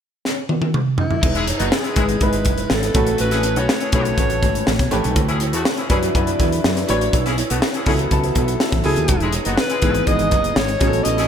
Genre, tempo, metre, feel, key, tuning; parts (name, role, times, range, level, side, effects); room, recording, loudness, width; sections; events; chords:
polished 1980s jazz-funk pop; 122 BPM; 4/4; straight; E major; A4 = 440 Hz
crisp fusion drum kit; drums; 0.3-11.3 s; crash cymbal, hi-hat, kick drum, snare drum, toms; -20 LUFS; equal
breathy alto saxophone; melody; 1.0-4.9, 8.9-11.3 s; E4 to D#5; -23 LUFS; equal; slapback echo
electric guitar through a small old amp; riff; 1.2-11.2 s; C#4 to C#5; -28 LUFS; right 6 dB; lush chorus, slapback echo
woody fretless electric bass; bass; 1.2-11.3 s; E1 to F#2; -22 LUFS; equal; ensemble chorus
warm horn section; second line; 1.3-11.3 s; G#3 to G#4; -28 LUFS; left 2 dB; slapback echo, digital delay
warm concert grand piano; accompaniment; 2.0-11.3 s; E3 to C#5; -23 LUFS; left 1 dB; wide subtle chorus, slapback echo
moderate concert hall reverb, RT60 2.3 s; big arena sound; -16 LUFS; side -8 dB against mid
0.0-1.2 A section; 1.2-11.3 B section
drum fill 0.2-1.2
0.0 N.C.; 1.2 Emaj7; 3.0 A69; 4.7 A9; 5.2 D69; 7.1 B7sus4; 9.1 Emaj7